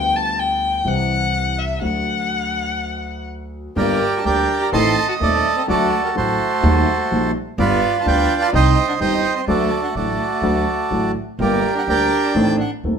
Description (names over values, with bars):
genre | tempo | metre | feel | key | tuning
tango | 126 BPM | 4/4 | rubato | G harmonic minor from 3.8 s | A4 = 440 Hz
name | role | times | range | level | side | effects
dark violin | second line | 0.0-12.7 s | G3 to A5 | -24 LUFS | left 4 dB | none
dark concert grand piano | accompaniment | 0.0-13.0 s | Eb1 to A4 | -22 LUFS | left 1 dB | none
upright bass | bass | 0.0-13.0 s | G1 to Eb2 | -24 LUFS | right 1 dB | none
bandoneon | melody | 3.8-12.7 s | F4 to C6 | -18 LUFS | right 4 dB | none
room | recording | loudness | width
moderate studio reverb, RT60 0.9 s | band playing live in one room | -16 LUFS | side -7 dB against mid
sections
0.0-3.8 A section; 3.8-13.0 B section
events
violin solo 0.0-3.8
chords
0.0 G7/D; 0.9 C; 1.8 D; 3.8 Gm; 4.7 Adim; 5.7 D; 6.6 Eb; 7.6 G7; 8.5 Cm; 9.5 D; 11.4 Gm; 12.4 Adim